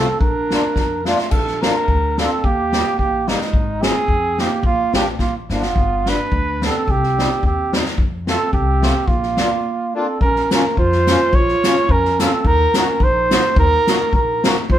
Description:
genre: alpine folk, alpine dance band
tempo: 108 BPM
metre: 2/4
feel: swing 54% on 8ths, rubato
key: Bb major, Bb harmonic minor from 10.2 s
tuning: A4 = 440 Hz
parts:
  - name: dark trumpet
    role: melody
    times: 0.0-14.8 s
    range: Eb4 to Db5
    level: -19 LUFS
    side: right 2 dB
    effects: none
  - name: dark clarinet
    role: second line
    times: 0.0-14.8 s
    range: Ab3 to F4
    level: -25 LUFS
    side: right 3 dB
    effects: none
  - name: accordion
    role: accompaniment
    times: 0.0-14.6 s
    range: F3 to Gb4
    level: -24 LUFS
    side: left 3 dB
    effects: light tremolo tuning
  - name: upright bass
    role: bass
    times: 0.2-14.8 s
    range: G1 to F2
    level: -22 LUFS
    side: left 1 dB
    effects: none
  - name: unplugged drum kit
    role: drums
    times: 0.2-14.8 s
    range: crash cymbal, hi-hat, kick drum, snare drum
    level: -19 LUFS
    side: left 1 dB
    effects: none
room: wet studio reverb, RT60 0.8 s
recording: band playing live in one room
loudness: -15 LUFS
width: side -11 dB against mid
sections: 0.0-1.3 A section; 1.3-10.2 B section; 10.2-14.8 C section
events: drum fill 0.8-1.3, 5.2-5.8; break 9.6-10.2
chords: 0.2 Bb; 2.4 Eb; 3.5 Ab; 4.6 Bb; 5.8 G; 6.9 Cm; 8.0 F; 9.1 Bb; 10.2 Bbmadd9; 12.4 Ebm

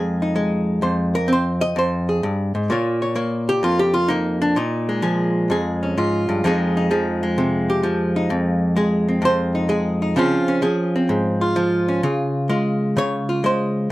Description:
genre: solo jazz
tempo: 128 BPM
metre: 4/4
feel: swing 68% on 8ths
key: F minor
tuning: A4 = 440 Hz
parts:
  - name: archtop guitar, miked and amplified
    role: solo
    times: 0.0-13.9 s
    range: F2 to Eb5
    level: -18 LUFS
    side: equal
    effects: none
room: light reverb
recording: dark, warm production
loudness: -18 LUFS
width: side -17 dB against mid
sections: 0.0-13.9 A section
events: hollow-body jazz guitar solo 0.0-13.9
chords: 0.0 Fm7; 2.7 Bbm7; 6.4 Fm7; 10.2 Dbmaj7

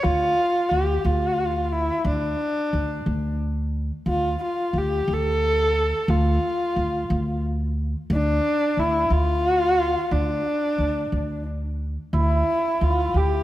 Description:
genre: persian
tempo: 60 BPM (dotted quarters)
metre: 6/8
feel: straight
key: D avaz esfahan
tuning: A4 = 442 Hz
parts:
  - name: dark kamancheh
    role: melody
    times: 0.0-13.4 s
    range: D4 to A4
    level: -22 LUFS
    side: equal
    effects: none
  - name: upright bass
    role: bass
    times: 0.0-13.4 s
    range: D2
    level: -24 LUFS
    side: equal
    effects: none
  - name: santur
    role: second line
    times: 12.1-13.4 s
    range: E4 to G4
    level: -29 LUFS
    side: right 4 dB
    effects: none
room: moderate scoring stage reverb, RT60 1.8 s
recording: none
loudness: -20 LUFS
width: side -14 dB against mid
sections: 0.0-4.1 A section; 4.1-13.4 A section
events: none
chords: none

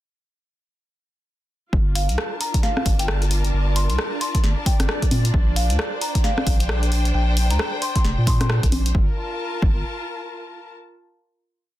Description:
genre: UK garage, two-step garage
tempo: 133 BPM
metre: 4/4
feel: swing 61% on 16ths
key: G minor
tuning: A4 = 439 Hz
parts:
  - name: soft string machine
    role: sustained chords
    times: 1.7-9.0 s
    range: D4 to D5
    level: -34 LUFS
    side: right 1 dB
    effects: phaser, ensemble chorus, sidechain pumping
  - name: saturated sub bass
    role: bass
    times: 1.7-9.8 s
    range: F1 to Bb2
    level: -20 LUFS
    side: equal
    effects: sidechain pumping
  - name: electronic kick drum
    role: drums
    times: 1.7-9.7 s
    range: none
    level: -20 LUFS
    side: equal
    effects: none
  - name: rich studio string section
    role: texture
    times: 1.7-10.7 s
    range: D4 to A5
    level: -31 LUFS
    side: left 1 dB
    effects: sidechain pumping
  - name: marimba with medium mallets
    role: melody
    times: 2.0-8.5 s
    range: F5 to C6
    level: -30 LUFS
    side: left 1 dB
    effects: tape echo
  - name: punchy analog drum machine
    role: drums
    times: 2.0-8.9 s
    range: congas, hi-hat, rim click, snare drum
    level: -26 LUFS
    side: equal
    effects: soft clipping on snare
room: little or no reverb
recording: dense, heavily limited modern master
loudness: -18 LUFS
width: side -14 dB against mid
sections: 1.7-8.9 drop; 8.9-10.8 final chord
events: drop 1.7-8.9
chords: 1.7 Gm9; 5.1 Bb69; 8.9 Gm9

